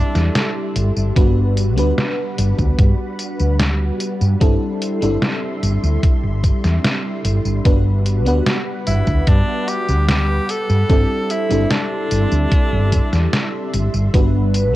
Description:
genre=vaporwave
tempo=74 BPM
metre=4/4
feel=straight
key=G major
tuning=A4 = 439 Hz
part: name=bright tenor saxophone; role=melody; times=0.0-0.8, 8.9-13.7 s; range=D4 to A4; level=-25 LUFS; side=equal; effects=tape echo
part: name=FM electric piano with soft pad layer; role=accompaniment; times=0.0-14.8 s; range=G3 to F#5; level=-23 LUFS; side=equal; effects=analog chorus, analog delay
part: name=soft string machine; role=sustained chords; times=0.0-14.8 s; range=G3 to C6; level=-28 LUFS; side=equal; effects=ensemble chorus
part: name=woody fretless electric bass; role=bass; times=0.1-14.7 s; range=G1 to G2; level=-17 LUFS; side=equal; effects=wide subtle chorus
part: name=detuned 8-bit digital drum machine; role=drums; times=0.2-14.7 s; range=hi-hat, snare drum, tambourine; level=-22 LUFS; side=equal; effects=vintage 12-bit sampler grit
part: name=electronic kick drum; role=drums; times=1.2-14.3 s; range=none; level=-16 LUFS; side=equal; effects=vintage 12-bit sampler grit
room=little or no reverb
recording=worn, warbling old tape, cassette tape, warbly pitch drift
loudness=-15 LUFS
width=side -16 dB against mid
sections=0.0-14.8 A section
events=none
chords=0.0 D9sus4; 1.2 Gmaj7; 4.4 D9sus4/G; 7.7 Gmaj7; 10.9 D9sus4/G; 14.1 Gmaj7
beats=0.36 | 1.17 1.98 2.79 3.60 | 4.41 5.22 6.03 6.84 | 7.65 8.46 9.28 10.09 | 10.90 11.71 12.52 13.33 | 14.14

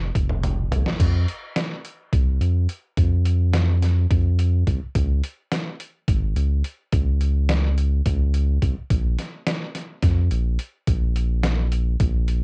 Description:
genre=progressive instrumental, band music in an uneven meter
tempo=213 BPM (eighths)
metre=7/8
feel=straight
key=F minor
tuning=A4 = 444 Hz
part: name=round analog bass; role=bass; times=0.0-12.4 s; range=F1 to F2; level=-19 LUFS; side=equal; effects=none
part: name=trip hop sampler-style drum kit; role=drums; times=0.2-12.4 s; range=crash cymbal, hi-hat, kick drum, snare drum, toms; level=-23 LUFS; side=equal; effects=overdrive, cassette tape
room=little or no reverb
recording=home recording on cassette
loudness=-19 LUFS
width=side -38 dB against mid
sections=1.0-12.4 A section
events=drum fill 0.0-1.0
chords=none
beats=0.15 0.43 0.71 | 1.00 1.28 1.56 1.84 2.13 2.41 2.69 | 2.97 3.26 3.54 3.82 4.10 4.39 4.67 | 4.95 5.23 5.51 5.80 6.08 6.36 6.64 | 6.92 7.21 7.49 7.77 8.05 8.34 8.62 | 8.90 9.18 9.46 9.75 10.03 10.31 10.59 | 10.87 11.15 11.44 11.72 12.00 12.28

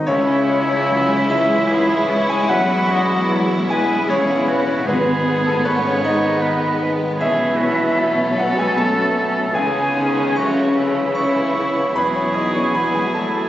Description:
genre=cinematic, emotional film score for orchestra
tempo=76 BPM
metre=3/4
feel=rubato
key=C# minor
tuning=A4 = 440 Hz
part: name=bright concert flute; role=second line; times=0.0-13.5 s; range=A4 to D#6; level=-25 LUFS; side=left 1 dB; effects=none
part: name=warm clarinet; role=second line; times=0.0-13.5 s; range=A3 to D#5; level=-25 LUFS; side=left 1 dB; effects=none
part: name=bright concert grand piano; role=accompaniment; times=0.0-13.5 s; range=B1 to D#6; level=-23 LUFS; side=left 1 dB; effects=none
part: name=warm French horn section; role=sustained chords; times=0.0-13.5 s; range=A2 to D#4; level=-25 LUFS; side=left 2 dB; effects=none
part: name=rich studio violin section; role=melody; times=0.1-13.5 s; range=B3 to E4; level=-25 LUFS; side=equal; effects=none
part: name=clear oboe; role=second line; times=0.1-13.5 s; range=E4 to D#5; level=-24 LUFS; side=right 1 dB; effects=none
part: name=warm studio violin section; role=second line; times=0.1-13.5 s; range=A3 to C#4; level=-28 LUFS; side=right 1 dB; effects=none
part: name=warm studio viola section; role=accompaniment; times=0.1-13.5 s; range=D#3 to G#3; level=-28 LUFS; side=equal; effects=none
part: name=clear studio double bass section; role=bass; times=0.1-13.5 s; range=E1 to C#2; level=-31 LUFS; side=right 2 dB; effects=none
part: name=warm studio cello section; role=bass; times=0.1-13.5 s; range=C#2 to C#3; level=-25 LUFS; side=right 1 dB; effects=none
part: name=timpani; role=percussion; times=4.9-6.0 s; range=G#2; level=-26 LUFS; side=equal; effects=none
room=moderate recital hall reverb, RT60 1.6 s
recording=recorded on a phone in the room, studio reverb, compression, nothing above 7.9 kHz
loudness=-15 LUFS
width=side -13 dB against mid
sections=0.1-13.5 A section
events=none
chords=0.1 C#m; 2.5 Eadd9; 4.9 G#m; 7.2 Bsus2; 9.5 C#m; 12.0 Eadd9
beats=| 0.08 0.89 1.69 | 2.50 3.29 4.09 | 4.87 5.65 6.43 | 7.21 7.99 8.78 | 9.54 10.37 11.16 | 11.95 12.74

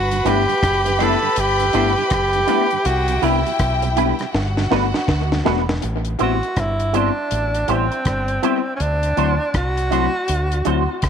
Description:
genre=lovers rock reggae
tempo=81 BPM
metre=4/4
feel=swing 62% on 16ths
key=A dorian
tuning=A4 = 441 Hz
part: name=breathy tenor saxophone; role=melody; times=0.0-11.0 s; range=C4 to A4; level=-21 LUFS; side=right 1 dB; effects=tape echo
part: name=clear studio string section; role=second line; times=0.0-5.8 s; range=E4 to B5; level=-24 LUFS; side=left 2 dB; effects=none
part: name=deep dub fingered electric bass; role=bass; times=0.0-11.1 s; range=E1 to D2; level=-22 LUFS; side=equal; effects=none
part: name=mellow tonewheel organ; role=accompaniment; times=0.1-5.7 s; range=G2 to F#4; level=-31 LUFS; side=right 13 dB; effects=chorus vibrato, slow rotary speaker
part: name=deep reggae drum kit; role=drums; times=0.1-11.1 s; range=hi-hat, kick drum, rim click, snare drum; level=-25 LUFS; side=left 1 dB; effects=tape echo
part: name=electric guitar with an envelope filter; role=stabs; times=0.2-10.9 s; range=D4 to C5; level=-25 LUFS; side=right 12 dB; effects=ensemble chorus
part: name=tine electric piano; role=accompaniment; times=0.3-10.9 s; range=F#3 to F#4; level=-24 LUFS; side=left 15 dB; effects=wide subtle chorus
room=moderate spring reverb, RT60 2.8 s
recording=1960s-style stereo with parts hard left and right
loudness=-16 LUFS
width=side -7 dB against mid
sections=0.0-5.8 A section; 5.8-11.1 B section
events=drum fill 4.3-5.8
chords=0.0 G6; 2.9 Cmaj7; 4.3 Gmaj7; 5.8 Am7; 8.8 D7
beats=0.62 1.37 2.11 | 2.85 3.60 4.34 5.08 | 5.83 6.57 7.31 8.05 | 8.80 9.54 10.29 11.03

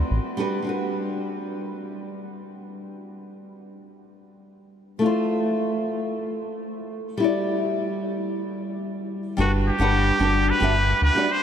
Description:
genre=sunset chillout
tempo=110 BPM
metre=4/4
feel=straight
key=G major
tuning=A4 = 440 Hz
part: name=round analog bass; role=bass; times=0.0-0.2, 9.4-11.1 s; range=G1 to D2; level=-22 LUFS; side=equal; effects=none
part: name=nylon-string guitar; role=accompaniment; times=0.4-11.3 s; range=G3 to F#5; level=-25 LUFS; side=left 1 dB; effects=auto-pan, tape echo
part: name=trumpet with straight mute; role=melody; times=9.4-11.4 s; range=F#4 to C5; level=-22 LUFS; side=right 1 dB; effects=none
room=wet huge ambient reverb, RT60 7.7 s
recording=dreamy mix soaked in reverb, lossy compression artefacts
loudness=-22 LUFS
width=side -8 dB against mid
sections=0.7-9.4 A section; 9.4-11.4 B section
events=none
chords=0.0 D6; 0.7 Gmaj7; 5.0 Fmaj7; 7.2 Em9/G; 9.4 Gmaj7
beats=0.11 | 0.66 1.20 1.75 2.29 | 2.84 3.38 3.93 4.47 | 5.02 5.57 6.11 6.66 | 7.20 7.75 8.29 8.84 | 9.38 9.93 10.47 11.02

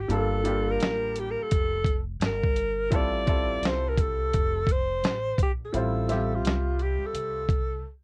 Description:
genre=hip hop, jazz-hop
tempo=85 BPM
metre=4/4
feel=swing 65% on 16ths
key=unclear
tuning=A4 = 440 Hz
part: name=breathy alto saxophone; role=melody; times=0.0-7.9 s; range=F4 to D5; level=-31 LUFS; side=equal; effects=none
part: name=upright bass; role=bass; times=0.0-7.8 s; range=F1 to C2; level=-34 LUFS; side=equal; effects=none
part: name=warm baby grand piano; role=accompaniment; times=0.1-7.4 s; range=G3 to E5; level=-34 LUFS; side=equal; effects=none
part: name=dusty soul sampler-style drum kit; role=drums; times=0.1-7.7 s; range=hi-hat, kick drum, snare drum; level=-29 LUFS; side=equal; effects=none
room=light reverb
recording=worn, warbling old tape, cassette tape, warbly pitch drift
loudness=-27 LUFS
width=mono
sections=0.0-8.0 A section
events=break 7.9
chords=0.1 Gm9; 2.9 Fmaj7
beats=| 0.10 0.80 1.51 2.21 | 2.92 3.62 4.33 5.04 | 5.74 6.45 7.15 7.86

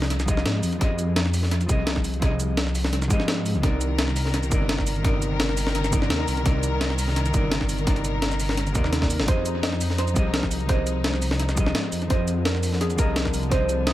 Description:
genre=liquid drum and bass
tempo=170 BPM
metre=4/4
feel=straight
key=unclear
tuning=A4 = 440 Hz
part: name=hollow-body jazz guitar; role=accompaniment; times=0.0-13.9 s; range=C3 to Eb5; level=-29 LUFS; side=equal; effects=tape echo
part: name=warm studio string section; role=sustained chords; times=0.0-0.8, 3.6-13.9 s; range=D3 to Bb4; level=-32 LUFS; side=left 3 dB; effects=vintage 12-bit sampler grit, sidechain pumping
part: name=dark detuned saw bass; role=bass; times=0.0-13.9 s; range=G1 to Ab2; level=-26 LUFS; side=equal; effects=none
part: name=breakbeat sampler-style drum kit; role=drums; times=0.0-13.9 s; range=hi-hat, shaker, snare drum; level=-27 LUFS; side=equal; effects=tape echo
part: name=electronic kick drum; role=drums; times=0.3-13.6 s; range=none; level=-23 LUFS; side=equal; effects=none
part: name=soft round pluck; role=melody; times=9.3-13.9 s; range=Ab4 to Eb5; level=-30 LUFS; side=right 3 dB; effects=lush chorus, tape echo
room=light reverb, digital ambience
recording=echo-heavy mix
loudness=-21 LUFS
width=side -14 dB against mid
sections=0.0-13.9 A section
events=drum fill 8.9-9.3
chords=0.0 Fm9; 3.6 Cm9; 9.3 Fm9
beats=0.10 0.46 | 0.81 1.16 1.52 1.87 | 2.22 2.58 2.93 3.28 | 3.63 3.99 4.34 4.69 | 5.04 5.40 5.75 6.10 | 6.46 6.81 7.16 7.52 | 7.87 8.22 8.57 8.93 | 9.28 9.63 9.99 10.34 | 10.69 11.04 11.40 11.75 | 12.10 12.46 12.81 13.16 | 13.52 13.87

